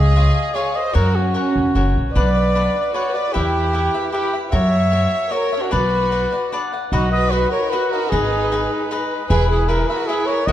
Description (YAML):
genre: mexican folk, mariachi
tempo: 151 BPM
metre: 3/4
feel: straight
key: B harmonic minor, B major from 6.9 s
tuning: A4 = 440 Hz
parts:
  - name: mellow trumpet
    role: melody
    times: 0.0-10.5 s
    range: F#4 to E5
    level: -21 LUFS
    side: equal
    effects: none
  - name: clear studio violin section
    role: second line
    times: 0.0-10.5 s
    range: C#4 to C#5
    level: -24 LUFS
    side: right 3 dB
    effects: none
  - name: cavaquinho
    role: accompaniment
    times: 0.0-10.5 s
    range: D4 to F#5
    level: -25 LUFS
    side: left 3 dB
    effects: none
  - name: upright bass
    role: bass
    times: 0.0-10.5 s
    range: E1 to F#2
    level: -18 LUFS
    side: equal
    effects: none
  - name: rich chamber violin section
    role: sustained chords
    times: 6.9-10.5 s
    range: G#3 to C#5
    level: -29 LUFS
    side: left 1 dB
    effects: none
room: moderate recital hall reverb, RT60 1.6 s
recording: dark, warm production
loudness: -16 LUFS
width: side -12 dB against mid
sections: 0.0-6.9 A section; 6.9-10.5 B section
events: none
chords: 0.0 C#; 1.0 F#; 2.2 Bm; 3.3 Em; 4.5 F#7; 5.7 Bm; 6.9 B; 8.1 G#m; 9.3 E